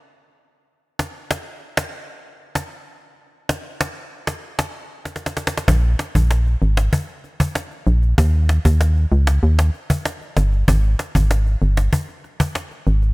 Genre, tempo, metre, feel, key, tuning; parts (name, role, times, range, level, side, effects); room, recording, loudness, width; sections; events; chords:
dancehall; 96 BPM; 4/4; straight; A4 = 439 Hz
cajon; drums; 1.0-13.1 s; -22 LUFS; equal
organ-like FM bass; bass; 5.7-13.1 s; G1 to Eb2; -15 LUFS; equal
studio reverb; -17 LUFS; side -24 dB against mid
0.0-5.7 A section; 5.7-13.1 B section
drum fill 5.1-5.7